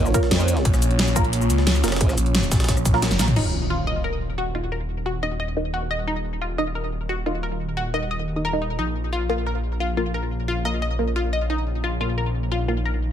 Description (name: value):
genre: dark technical drum and bass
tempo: 177 BPM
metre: 4/4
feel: straight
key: Eb minor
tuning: A4 = 441 Hz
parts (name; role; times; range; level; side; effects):
- deep dark ambient pad; sustained chords; 0.0-13.1 s; Bb3 to Eb5; -31 LUFS; equal; chorus, built-in reverb, sidechain pumping
- formant-sweep wobble bass; bass; 0.0-2.2 s; Ab1 to F2; -21 LUFS; equal; chorus
- filtered dub chord stab; stabs; 0.1-12.8 s; Bb3 to Eb5; -28 LUFS; right 1 dB; phaser, digital delay
- dubstep drum kit; drums; 0.1-3.4 s; crash cymbal, hi-hat, rim click, shaker, snare drum, toms; -24 LUFS; equal; none
- electronic kick drum; drums; 0.1-2.9 s; none; -22 LUFS; equal; none
- jungle sampler-style drum kit; drums; 0.1-3.4 s; hi-hat, snare drum; -30 LUFS; equal; high-pass filter on hats, high-pass filter on snare
- phased detuned saw bass; bass; 0.7-13.1 s; Eb1 to Db2; -25 LUFS; equal; phaser, overdrive
- analog pluck; arpeggios; 3.4-12.9 s; Eb4 to Eb5; -28 LUFS; left 2 dB; chorus, phaser, sidechain pumping, digital delay
- impact; sound effects; 3.4-4.7 s; none; -29 LUFS; equal; none
room: little or no reverb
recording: none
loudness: -20 LUFS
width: side -10 dB against mid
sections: 0.0-3.4 A section; 3.4-13.1 B section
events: drop 0.0-3.4; drum fill 3.0-3.4; band accent 3.2; impact 3.4-4.7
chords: 0.0 Bbm; 3.4 Ebm7; 8.8 Bbm